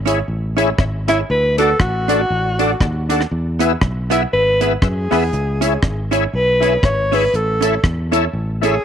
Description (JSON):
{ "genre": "ska", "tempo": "119 BPM", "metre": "4/4", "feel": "swing 58% on 8ths", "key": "unclear", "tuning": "A4 = 439 Hz", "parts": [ { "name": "fingered electric bass", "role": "bass", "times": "0.0-8.8 s", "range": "G#1 to F#2", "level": "-21 LUFS", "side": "equal", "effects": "none" }, { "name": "archtop guitar, miked and amplified", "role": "accompaniment", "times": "0.1-8.8 s", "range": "B3 to A4", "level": "-22 LUFS", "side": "right 14 dB", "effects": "none" }, { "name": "overdriven tonewheel organ", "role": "stabs", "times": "0.1-8.8 s", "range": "D4 to E5", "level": "-22 LUFS", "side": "left 11 dB", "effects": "chorus vibrato, slow rotary speaker" }, { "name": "deep reggae drum kit", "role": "drums", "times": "0.1-8.7 s", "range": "hi-hat, kick drum, rim click", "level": "-19 LUFS", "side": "equal", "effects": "none" }, { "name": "warm alto saxophone", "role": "melody", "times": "1.1-8.8 s", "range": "E4 to C#5", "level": "-18 LUFS", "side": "equal", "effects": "none" } ], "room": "moderate spring reverb, RT60 1.6 s, small room ambience", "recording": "1960s-style stereo with parts hard left and right", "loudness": "-15 LUFS", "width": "side -8 dB against mid", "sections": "0.0-8.8 A section", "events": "alto saxophone solo 0.0-8.8", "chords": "0.0 C#m; 1.3 D; 3.3 E; 5.3 C#m; 7.3 A", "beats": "0.29 0.79 | 1.29 1.80 2.30 2.81 | 3.31 3.81 4.32 4.82 | 5.33 5.83 6.33 6.83 | 7.34 7.84 8.34" }